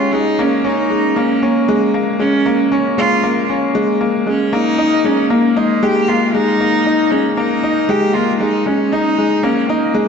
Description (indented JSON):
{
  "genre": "electronica",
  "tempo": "116 BPM",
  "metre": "4/4",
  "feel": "straight",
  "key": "unclear",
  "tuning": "A4 = 440 Hz",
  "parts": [
    { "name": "rich cello", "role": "melody", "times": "0.0-10.1 s", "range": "Ab3 to G4", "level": "-16 LUFS", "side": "right 2 dB", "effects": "none" },
    { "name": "bright grand piano", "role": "riff", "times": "0.0-10.1 s", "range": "Ab3 to Eb4", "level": "-15 LUFS", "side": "left 2 dB", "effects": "none" }
  ],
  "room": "wet concert hall reverb, RT60 2.4 s",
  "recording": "nothing above 7.9 kHz",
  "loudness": "-13 LUFS",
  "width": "side -6 dB against mid",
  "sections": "0.0-10.1 A section",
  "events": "none",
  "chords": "0.1 Bbm7; 4.3 Absus2",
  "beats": "| 0.13 0.65 1.17 1.68 | 2.20 2.72 3.23 3.75 | 4.27 4.79 5.30 5.82 | 6.34 6.86 7.37 7.89 | 8.41 8.92 9.44 9.96"
}